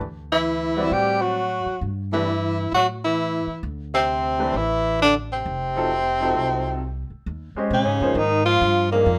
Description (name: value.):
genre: modal jazz.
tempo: 132 BPM.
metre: 4/4.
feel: swing 65% on 8ths.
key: unclear.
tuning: A4 = 440 Hz.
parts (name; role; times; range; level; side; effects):
upright bass; bass; 0.0-9.2 s; F1 to Bb2; -31 LUFS; equal; none.
breathy tenor saxophone; melody; 0.3-9.2 s; Bb3 to G4; -24 LUFS; equal; none.
breathy tenor saxophone; second line; 0.3-9.2 s; Bb2 to G3; -29 LUFS; equal; none.
clear concert grand piano; accompaniment; 0.8-9.1 s; E3 to Eb5; -28 LUFS; equal; none.
room: moderate studio reverb, RT60 0.7 s.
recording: none.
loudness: -22 LUFS.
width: mono.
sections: 0.0-7.3 A section; 7.3-9.2 B section.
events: none.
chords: 0.0 D9sus4; 5.5 F7b9; 7.3 Bb13sus4.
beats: | 0.02 0.47 0.92 1.38 | 1.83 2.28 2.73 3.19 | 3.64 4.09 4.54 5.00 | 5.45 5.90 6.36 6.81 | 7.26 7.72 8.17 8.62 | 9.08.